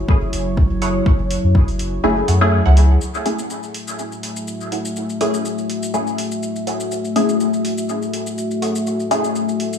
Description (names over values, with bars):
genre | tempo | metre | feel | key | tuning
dub techno | 123 BPM | 4/4 | swing 54% on 16ths | F# minor | A4 = 440 Hz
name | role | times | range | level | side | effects
dark analog pad | sustained chords | 0.0-9.8 s | F#3 to E5 | -22 LUFS | left 2 dB | chorus, sidechain pumping
soft dub sub bass | bass | 0.0-3.0 s | F#1 to F#2 | -16 LUFS | equal | sidechain pumping
electronic kick drum | drums | 0.1-1.7 s | none | -16 LUFS | equal | overdrive, studio ambience
electronic hi-hat and shaker | drums | 0.3-9.8 s | none | -30 LUFS | left 1 dB | overdrive, studio ambience
filtered dub chord stab | riff | 0.8-8.7 s | E4 to F#5 | -30 LUFS | right 3 dB | phaser, lush chorus, sidechain pumping, dub echo
filtered dub chord stab | stabs | 2.0-9.3 s | A3 to G#4 | -21 LUFS | left 1 dB | chorus, phaser, sidechain pumping, dub echo
room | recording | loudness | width
light reverb, digital ambience | small room ambience | -16 LUFS | side -7 dB against mid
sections
0.0-3.0 A section; 3.0-9.8 B section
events
kick drops out 2.0-3.0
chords
0.0 F#m7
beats
0.09 0.57 | 1.06 1.55 2.04 2.52 | 3.01 3.50 3.99 4.48 | 4.96 5.45 5.94 6.43 | 6.92 7.40 7.89 8.38 | 8.87 9.35